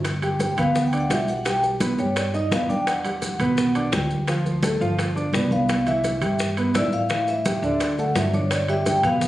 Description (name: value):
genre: Afro-Cuban jazz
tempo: 170 BPM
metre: 4/4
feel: straight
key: G major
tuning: A4 = 440 Hz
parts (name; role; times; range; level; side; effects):
- upright bass; bass; 0.0-9.3 s; G1 to A2; -27 LUFS; equal; none
- bongos; percussion; 0.0-9.3 s; none; -31 LUFS; left 3 dB; none
- congas; percussion; 0.0-9.3 s; none; -29 LUFS; equal; none
- maracas; percussion; 0.0-9.3 s; none; -38 LUFS; left 1 dB; none
- timbales; percussion; 0.0-9.2 s; none; -32 LUFS; right 2 dB; none
- warm concert grand piano; accompaniment; 0.2-9.3 s; D3 to G6; -25 LUFS; right 1 dB; none
- vibraphone with medium mallets; melody; 0.4-9.3 s; C#5 to G5; -25 LUFS; left 1 dB; none
room: moderate large studio reverb, RT60 1.2 s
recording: recorded on a phone in the room, studio reverb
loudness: -20 LUFS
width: side -15 dB against mid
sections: 0.0-9.3 A section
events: vibraphone solo 0.0-9.3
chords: 0.0 G; 1.5 Baug; 2.9 Em9; 4.3 Dm; 5.0 G7; 5.7 Cmaj7; 7.1 A5; 7.8 D; 8.5 G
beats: | 0.05 0.40 0.75 1.11 | 1.46 1.81 2.16 2.52 | 2.87 3.22 3.57 3.93 | 4.28 4.63 4.98 5.34 | 5.69 6.04 6.39 6.75 | 7.10 7.45 7.80 8.16 | 8.51 8.86 9.22